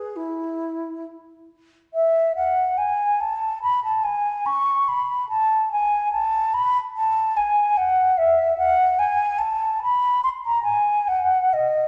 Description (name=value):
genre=classical, baroque-style fantasia for unaccompanied flute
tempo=66-74 BPM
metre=4/4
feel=rubato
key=E major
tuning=A4 = 440 Hz
part: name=mellow hollow concert flute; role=solo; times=0.0-11.9 s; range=E4 to C#6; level=-21 LUFS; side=equal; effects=none
room=wet recital hall reverb, RT60 1.5 s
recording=none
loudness=-21 LUFS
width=mono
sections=0.0-11.9 A section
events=none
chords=none